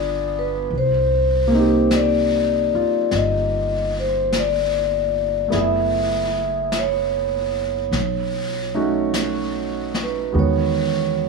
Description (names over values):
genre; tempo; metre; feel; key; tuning
jazz ballad; 50 BPM; 4/4; swing 69% on 8ths; unclear; A4 = 439 Hz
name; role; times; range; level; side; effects
vibraphone with soft mallets; melody; 0.0-11.3 s; B4 to Fb5; -21 LUFS; left 1 dB; none
warm concert grand piano; accompaniment; 0.0-11.3 s; D#3 to Ab4; -23 LUFS; right 2 dB; none
upright bass; bass; 0.0-11.3 s; Gb1 to E2; -26 LUFS; equal; none
jazz brush drum kit; drums; 0.7-11.3 s; brushed snare drum, hi-hat, snare drum; -30 LUFS; left 2 dB; none
room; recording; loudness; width
little or no reverb; studio reverb; -18 LUFS; side -4 dB against mid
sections
0.0-11.3 A section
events
none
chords
0.0 G7b9; 0.7 Cm9; 5.5 Gbm11; 7.9 B7; 10.3 Emaj7